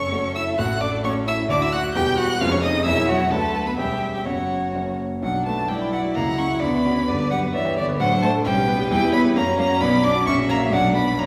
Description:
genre	quick classical-period movement for piano quintet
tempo	131 BPM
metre	2/4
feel	rubato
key	B minor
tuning	A4 = 440 Hz
part	rich violin	melody	0.0-11.3 s	D5 to G6	-27 LUFS	equal	none
part	rich cello	second line	0.0-11.3 s	D3 to G4	-27 LUFS	equal	none
part	rich violin	second line	0.0-11.3 s	F#4 to G5	-30 LUFS	equal	none
part	clear viola	accompaniment	0.0-11.3 s	B3 to E5	-30 LUFS	equal	none
part	warm grand piano	accompaniment	0.0-11.3 s	E1 to B5	-27 LUFS	equal	none
room	wet recital hall reverb, RT60 1.4 s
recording	heard from further back in the room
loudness	-21 LUFS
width	mono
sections	0.0-5.2 A section; 5.2-11.3 B section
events	none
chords	0.0 F#m; 0.6 F#m/A; 1.5 D; 1.9 Em; 2.4 C#7/E#; 2.9 F#7/E; 3.3 Bm/D; 3.8 C#m7b5/E; 4.3 F#sus4; 4.7 F#; 5.2 Bm; 6.2 F#7/C#; 6.6 Bm/D; 7.1 G; 8.0 D7/A; 8.4 G/B; 8.9 C#dim/E; 9.4 F#; 9.8 Bm; 10.3 F#/A#; 10.7 Bm

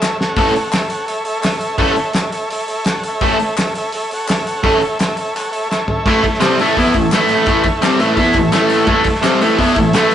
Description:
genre	garage rock duo or trio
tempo	169 BPM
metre	4/4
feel	straight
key	A major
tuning	A4 = 440 Hz
part	overdriven combo organ	sustained chords	0.0-10.1 s	A4 to F#5	-20 LUFS	equal	none
part	cloth-damped thuddy drum kit	drums	0.0-10.1 s	crash cymbal, hi-hat, kick drum, snare drum, toms	-20 LUFS	equal	none
part	group handclap	percussion	0.0-10.0 s	none	-26 LUFS	left 2 dB	none
part	biting overdriven guitar	riff	0.4-10.1 s	A2 to A4	-13 LUFS	equal	none
room	wet stone room reverb, RT60 0.9 s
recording	rough rehearsal-room recording, nothing above 11.0 kHz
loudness	-13 LUFS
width	side -10 dB against mid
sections	0.0-6.1 A section; 6.1-10.1 B section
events	drum fill 0.0-0.4, 5.7-6.1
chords	0.0 A

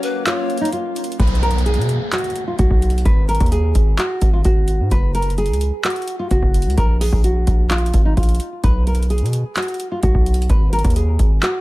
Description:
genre	hip hop, trap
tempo	129 BPM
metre	4/4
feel	half-time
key	unclear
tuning	A4 = 440 Hz
part	nylon-string guitar	melody	0.0-11.6 s	Eb4 to B4	-23 LUFS	equal	low-pass filter, ping-pong delay
part	pan flute	second line	0.0-0.7 s	Cb5 to Db5	-27 LUFS	left 5 dB	ping-pong delay
part	glassy FM pad	sustained chords	0.0-1.2 s	Bb3 to F5	-28 LUFS	left 1 dB	ensemble chorus, built-in reverb
part	booming analog drum machine	drums	0.0-11.5 s	handclaps, hi-hat, kick drum	-18 LUFS	equal	none
part	hard-hitting 808-style bass	bass	1.2-11.4 s	Gb1 to B2	-17 LUFS	equal	none
part	downlifter	sound effects	1.2-4.9 s	none	-29 LUFS	equal	none
room	little or no reverb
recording	lossy compression artefacts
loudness	-15 LUFS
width	side -18 dB against mid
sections	0.0-1.2 A section; 1.2-11.6 B section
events	break 0.0-1.2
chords	0.0 Bbm; 1.2 B5; 3.1 Ab5; 4.9 Gb5; 6.8 Bb5; 8.6 B5; 10.5 Ab5

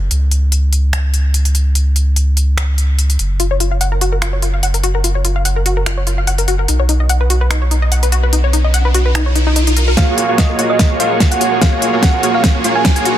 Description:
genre	future bass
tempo	146 BPM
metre	4/4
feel	swing 54% on 16ths, half-time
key	F# major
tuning	A4 = 439 Hz
part	saturated sub bass	bass	0.0-10.0 s	F#1 to C#2	-14 LUFS	equal	sidechain pumping
part	downlifter and riser	sound effects	0.0-0.1, 7.8-13.2 s	none	-25 LUFS	right 1 dB	none
part	pop drum kit	drums	0.1-13.1 s	finger snaps, hi-hat, snare drum	-19 LUFS	equal	soft clipping on snare, small room ambience
part	wide unison pluck	arpeggios	3.4-13.1 s	D#4 to F#5	-20 LUFS	left 4 dB	auto-pan, sidechain pumping, digital delay
part	thumb-piano-like synth pluck	melody	10.0-13.2 s	D#5 to G#5	-18 LUFS	right 2 dB	chorus, cassette tape, sidechain pumping, digital delay
part	dense compressed supersaw	riff	10.0-13.2 s	A#3 to C#5	-16 LUFS	right 1 dB	sidechain pumping, low-pass filter
part	electronic kick drum	drums	10.0-12.9 s	none	-14 LUFS	equal	small room ambience
room	little or no reverb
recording	dense, heavily limited modern master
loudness	-12 LUFS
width	side -12 dB against mid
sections	0.0-10.0 A section; 10.0-13.2 B section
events	riser 7.8-10.0; build-up 10.0-13.2; drum fill 10.0-13.2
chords	0.0 N.C.; 3.2 F#maj7(no3); 6.7 B; 10.0 F#maj9

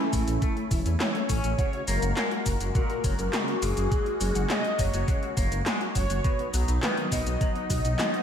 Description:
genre	synthwave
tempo	103 BPM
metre	4/4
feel	straight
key	unclear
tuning	A4 = 441 Hz
part	mellow synth brass	melody	0.0-8.2 s	G#4 to D#5	-32 LUFS	equal	chorus, ping-pong delay, slapback echo
part	phased analog pad	sustained chords	0.0-8.2 s	F#3 to F#4	-33 LUFS	left 1 dB	phaser, chorus, sidechain pumping
part	clean electric guitar	arpeggios	0.0-8.1 s	A#2 to C#4	-36 LUFS	left 2 dB	harmonic tremolo, ping-pong delay, slapback echo
part	mellow electric guitar	riff	0.0-8.2 s	A3 to F#5	-38 LUFS	left 4 dB	ensemble chorus, ping-pong delay, slapback echo
part	dark detuned saw bass	bass	0.1-8.0 s	E1 to E2	-27 LUFS	equal	tube saturation, sidechain pumping
part	80s electronic pad drums	drums	0.1-8.2 s	handclaps, hi-hat, shaker, snare drum	-31 LUFS	equal	none
part	electronic kick drum	drums	0.1-7.8 s	none	-28 LUFS	equal	none
room	moderate scoring stage reverb, RT60 1.5 s, digital ambience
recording	big arena sound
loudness	-24 LUFS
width	side -8 dB against mid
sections	0.0-8.2 A section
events	none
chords	0.0 A; 1.6 F#add9; 6.2 B

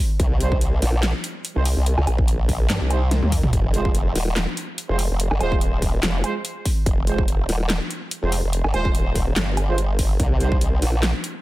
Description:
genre	heavy wobble dubstep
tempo	144 BPM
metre	4/4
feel	swing 54% on 16ths, half-time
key	F minor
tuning	A4 = 440 Hz
part	formant-sweep wobble bass	bass	0.2-10.8 s	Eb1 to Eb2	-21 LUFS	equal	chorus, overdrive
part	big-room dance drum kit	drums	0.2-11.3 s	handclaps, hi-hat, snare drum, toms, woodblock	-26 LUFS	equal	none
part	electronic kick drum	drums	0.2-10.6 s	none	-21 LUFS	equal	none
part	mellow brass ensemble	stabs	0.4-10.6 s	G3 to C5	-29 LUFS	right 4 dB	tape echo
part	formant-sweep wobble bass	bass	0.8-11.1 s	Eb1 to G2	-21 LUFS	equal	chorus, overdrive
room	little or no reverb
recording	dense, heavily limited modern master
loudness	-19 LUFS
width	side -18 dB against mid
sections	0.0-11.4 A section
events	drum fill 3.1-3.5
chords	0.0 Cm; 3.5 Fm; 10.2 Cm

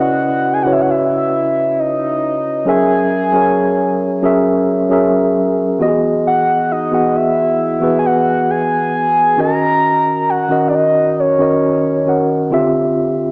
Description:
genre	R&B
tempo	67 BPM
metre	4/4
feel	straight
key	unclear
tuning	A4 = 440 Hz
part	soft octave-layered synth lead	melody	0.0-12.5 s	C#5 to A#5	-18 LUFS	equal	chorus, phaser, cassette tape, analog delay
part	mellow tine electric piano	accompaniment	0.0-13.3 s	C#3 to F#5	-17 LUFS	equal	cassette tape
room	moderate lush hall reverb, RT60 2.4 s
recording	home recording on cassette, small speaker sound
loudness	-15 LUFS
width	mono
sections	0.0-13.3 A section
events	none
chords	0.0 C#m11; 2.7 F#9; 5.8 Emaj9; 9.4 D#m7; 12.5 Dm11

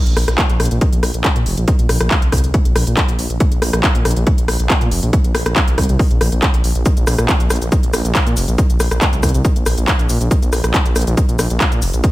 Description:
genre	driving peak-time techno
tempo	139 BPM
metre	4/4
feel	straight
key	unclear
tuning	A4 = 439 Hz
part	detuned saw bass	bass	0.1-12.0 s	F1 to Bb2	-18 LUFS	equal	sidechain pumping
part	techno drum kit	drums	0.1-12.1 s	handclaps, hi-hat, rim click, shaker	-19 LUFS	equal	overdrive, studio reverb
part	electronic kick drum	drums	0.4-12.1 s	none	-15 LUFS	equal	overdrive, studio reverb
room	little or no reverb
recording	none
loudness	-13 LUFS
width	side -17 dB against mid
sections	0.0-12.1 A section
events	none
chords	none

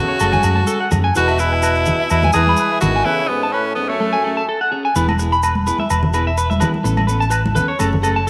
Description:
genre	highlife guitar band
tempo	126 BPM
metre	4/4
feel	swing 54% on 16ths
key	E major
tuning	A4 = 440 Hz
part	raspy tenor saxophone	melody	0.0-4.5 s	A3 to G#4	-22 LUFS	equal	none
part	warm trombone	second line	0.0-4.5 s	F#2 to E3	-29 LUFS	equal	none
part	clean electric guitar	accompaniment	0.0-8.2 s	E3 to A4	-28 LUFS	equal	none
part	electric guitar at the edge of break-up	arpeggios	0.1-8.3 s	A4 to B5	-22 LUFS	equal	spring reverb, tape echo
part	hollow-body short-scale fingered electric bass	bass	0.2-8.3 s	E1 to F#2	-21 LUFS	equal	none
part	agogo bells	percussion	0.2-8.2 s	none	-27 LUFS	equal	none
part	maracas	percussion	0.2-8.3 s	none	-34 LUFS	equal	none
part	congas	percussion	0.3-8.0 s	none	-25 LUFS	equal	none
room	light reverb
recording	none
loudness	-17 LUFS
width	mono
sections	0.0-5.0 A section; 5.0-8.3 B section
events	break 3.1-5.0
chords	0.2 F#madd9; 1.2 E; 3.1 Aadd9; 4.0 F#madd9; 5.0 E; 6.9 Aadd9

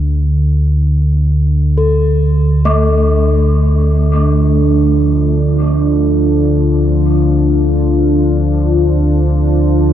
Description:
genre	dark ambient drone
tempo	free time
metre	none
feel	none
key	D minor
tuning	A4 = 440 Hz
part	deep rumbling drone	drone	0.0-9.9 s	D2 to D3	-12 LUFS	equal	built-in reverb
part	deep dark ambient pad	sustained chords	2.9-9.9 s	D4 to C5	-16 LUFS	right 2 dB	chorus, built-in reverb
part	quartz singing bowl	texture	1.8-9.9 s	A4	-21 LUFS	left 4 dB	none
part	gamelan-type bronze metallophone	arpeggios	2.7-8.5 s	A3	-22 LUFS	left 2 dB	diffuse ambient delay
room	wet huge ambient reverb, RT60 7.1 s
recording	none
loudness	-10 LUFS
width	side -10 dB against mid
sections	0.0-9.9 A section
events	none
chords	0.0 Dm

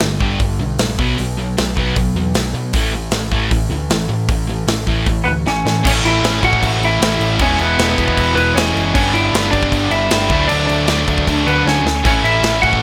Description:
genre	punk rock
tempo	154 BPM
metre	4/4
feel	straight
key	A mixolydian, A major from 5.8 s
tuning	A4 = 440 Hz
part	sludgy distorted guitar	riff	0.0-12.8 s	G2 to E4	-25 LUFS	equal	overdrive
part	sludgy distorted guitar	riff	0.0-12.8 s	E2 to D4	-25 LUFS	equal	overdrive
part	hollow-body short-scale picked electric bass	bass	0.0-12.8 s	E1 to B2	-24 LUFS	equal	none
part	big rock drum kit	drums	0.0-12.8 s	crash cymbal, hi-hat, kick drum, snare drum	-22 LUFS	equal	none
part	lightly driven lead guitar	melody	5.2-12.8 s	B3 to F#5	-20 LUFS	equal	tape echo
part	high-gain distorted guitar	riff	5.8-12.8 s	G2 to E4	-23 LUFS	equal	distortion
room	light reverb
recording	none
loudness	-16 LUFS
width	mono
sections	0.0-5.8 A section; 5.8-12.8 B section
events	drum fill 5.5-5.8, 11.7-12.1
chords	0.0 G; 1.0 B5; 2.7 A; 7.4 E; 8.9 G; 10.3 D; 12.1 A

